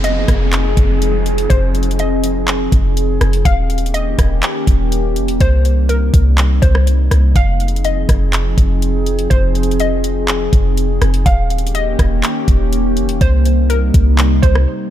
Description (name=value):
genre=hip hop, atmospheric cloud-rap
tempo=123 BPM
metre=4/4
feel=half-time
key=F minor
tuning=A4 = 443 Hz
part: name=warbly dusty pluck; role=melody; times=0.0-14.9 s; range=Bb4 to F5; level=-23 LUFS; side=left 2 dB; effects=chorus, tape echo
part: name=warbly tape-like pad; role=sustained chords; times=0.0-14.9 s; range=C3 to Ab4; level=-19 LUFS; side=equal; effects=chorus, built-in reverb, sidechain pumping
part: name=clean 808-style bass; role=bass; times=0.0-14.7 s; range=Eb1 to C2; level=-14 LUFS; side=equal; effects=none
part: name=trap drum kit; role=drums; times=0.0-14.7 s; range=handclaps, hi-hat, kick drum, rim click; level=-16 LUFS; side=equal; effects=none
part: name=downlifter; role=sound effects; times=0.0-3.5 s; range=none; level=-28 LUFS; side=right 2 dB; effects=none
room=little or no reverb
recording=none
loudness=-12 LUFS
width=side -12 dB against mid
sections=0.0-14.9 A section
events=break 14.7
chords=0.0 Fm7; 3.5 Eb7; 5.4 Cm7; 7.4 Fm7; 11.3 Eb7; 13.2 Cm7